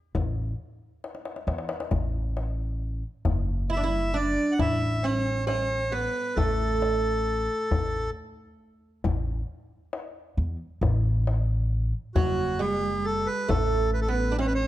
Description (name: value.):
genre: Arabic maqam ensemble.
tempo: 135 BPM (eighths).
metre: 10/8.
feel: straight.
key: A maqam rast.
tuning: A4 = 440 Hz.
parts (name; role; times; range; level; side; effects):
upright bass; bass; 0.1-14.7 s; F#1 to E2; -28 LUFS; equal; none.
darbuka; percussion; 0.1-14.6 s; none; -30 LUFS; left 3 dB; none.
accordion; melody; 3.7-14.7 s; F#4 to F#5; -28 LUFS; equal; none.
oud; second line; 3.7-14.7 s; F#3 to E4; -29 LUFS; right 4 dB; none.
room: light reverb.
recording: dark, warm production.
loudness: -24 LUFS.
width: side -14 dB against mid.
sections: 0.0-14.7 A section.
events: drum fill 1.0-1.9.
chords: none.